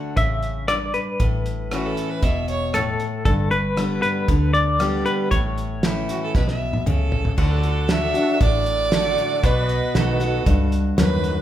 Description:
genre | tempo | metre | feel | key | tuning
honky-tonk and classic country | 117 BPM | 4/4 | straight | D major | A4 = 440 Hz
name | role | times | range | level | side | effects
clean electric guitar | melody | 0.0-6.8 s | A4 to F#5 | -23 LUFS | left 2 dB | tremolo
picked steel-string acoustic guitar | accompaniment | 0.0-11.4 s | F#2 to G4 | -25 LUFS | left 2 dB | none
vintage muted fingered electric bass | bass | 0.2-11.4 s | E1 to D#2 | -24 LUFS | equal | none
cloth-damped thuddy drum kit | drums | 0.2-11.4 s | crash cymbal, hi-hat, kick drum, rim click, snare drum, toms | -23 LUFS | right 1 dB | none
clear fiddle | second line | 1.7-2.7, 6.1-11.4 s | F#4 to E5 | -25 LUFS | right 3 dB | none
pedal steel guitar | sustained chords | 7.4-11.4 s | F#4 to D#5 | -32 LUFS | right 1 dB | none
bright tonewheel organ | accompaniment | 7.9-11.4 s | D4 to B4 | -31 LUFS | right 5 dB | slow rotary speaker, chorus vibrato
room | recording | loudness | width
moderate large studio reverb, RT60 1.2 s | band playing live in one room | -18 LUFS | side -12 dB against mid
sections
0.0-7.4 A section; 7.4-11.4 A section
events
drum fill 6.3-7.4; fiddle solo 7.4-11.4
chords
0.0 D; 1.2 A; 3.3 G; 5.3 A; 7.4 D; 9.4 B7

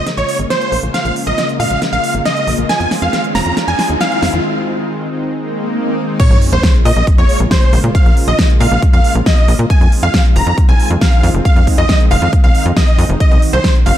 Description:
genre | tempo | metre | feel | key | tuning
uplifting trance | 137 BPM | 4/4 | straight | Bb minor | A4 = 440 Hz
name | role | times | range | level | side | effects
big supersaw lead | melody | 0.0-14.0 s | C5 to Bb5 | -18 LUFS | right 1 dB | vintage 12-bit sampler grit, sidechain pumping, tape echo
analog pluck | second line | 0.0-14.0 s | C5 to Bb5 | -24 LUFS | equal | none
tight sequencer bass | bass | 0.0-13.9 s | F1 to Bb2 | -15 LUFS | equal | sidechain pumping
riser, swell and sub drop | sound effects | 1.2-7.9 s | none | -22 LUFS | equal | none
big-room dance drum kit | drums | 0.1-13.9 s | crash cymbal, hi-hat, snare drum | -20 LUFS | equal | studio reverb
electronic kick drum | drums | 6.2-13.7 s | none | -11 LUFS | equal | studio reverb
room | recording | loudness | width
light reverb, digital ambience | dark, warm production | -10 LUFS | side -12 dB against mid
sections
0.0-6.2 A section; 6.2-14.0 B section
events
build-up 0.0-6.2; drum fill 0.0-4.4; riser 1.2-4.4; break 4.4-6.2; swell 5.4-6.2; drop 6.2-14.0; impact 6.2-7.9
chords
0.0 Bbm7; 2.7 Fm7; 6.2 Bbm7; 9.7 Fm7; 13.2 Cdim

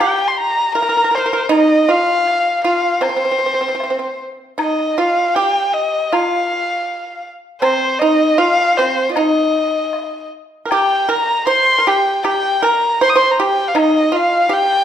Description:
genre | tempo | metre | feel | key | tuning
chinese traditional, Chinese chamber ensemble | 79 BPM | 2/4 | rubato | C yu mode | A4 = 442 Hz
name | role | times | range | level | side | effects
warm erhu | melody | 0.0-14.8 s | C5 to Eb6 | -16 LUFS | left 1 dB | none
pipa | second line | 0.0-14.8 s | C4 to C5 | -17 LUFS | right 2 dB | none
woodblock | percussion | 0.0-13.9 s | none | -26 LUFS | left 4 dB | none
room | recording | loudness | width
wet recital hall reverb, RT60 1.3 s | recorded in a church or concert hall | -13 LUFS | side -9 dB against mid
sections
0.0-4.6 A section; 4.6-14.8 B section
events
none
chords
none

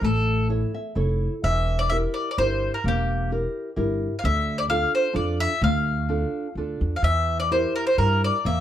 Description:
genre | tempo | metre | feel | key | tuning
italian folk, Italian serenade | 128 BPM | 3/4 | rubato | D minor | A4 = 440 Hz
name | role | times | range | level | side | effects
bowl-back mandolin | melody | 0.0-8.6 s | G4 to F5 | -24 LUFS | left 1 dB | plate reverb
nylon-string guitar | accompaniment | 0.0-8.6 s | D3 to E5 | -28 LUFS | equal | none
upright bass | bass | 0.0-8.6 s | E1 to G2 | -24 LUFS | equal | none
room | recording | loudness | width
light reverb | none | -21 LUFS | side -11 dB against mid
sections
0.0-8.6 A section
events
nylon-string guitar fill 0.5-1.4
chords
0.0 A; 1.4 Edim; 4.2 Dm; 7.0 Edim

